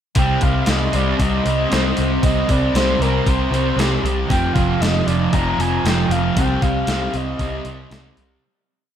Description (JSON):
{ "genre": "rock, shoegaze and dream pop", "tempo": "116 BPM", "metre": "4/4", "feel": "straight", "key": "C minor", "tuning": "A4 = 441 Hz", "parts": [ { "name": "reedy FM lead", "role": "melody", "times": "0.2-8.2 s", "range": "G4 to Bb5", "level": "-24 LUFS", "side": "equal", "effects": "chorus, tremolo, analog delay" }, { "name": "fuzz guitar", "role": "riff", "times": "0.2-8.4 s", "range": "F2 to C4", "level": "-20 LUFS", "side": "right 1 dB", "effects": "distortion, lush chorus" }, { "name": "vintage muted picked electric bass", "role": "bass", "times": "0.2-8.4 s", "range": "F1 to C2", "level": "-22 LUFS", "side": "equal", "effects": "none" }, { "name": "gated 80s digital drum machine", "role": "drums", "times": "0.2-8.3 s", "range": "hi-hat, kick drum, snare drum", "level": "-22 LUFS", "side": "equal", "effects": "gated reverb, gated reverb snare, overdrive" } ], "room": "moderate lush hall reverb, RT60 1.9 s, digital ambience", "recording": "dreamy mix soaked in reverb", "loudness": "-16 LUFS", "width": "side -9 dB against mid", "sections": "0.2-8.4 A section", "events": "fade-out 6.4-8.4", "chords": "0.2 Cm; 4.3 F5; 6.4 Cm" }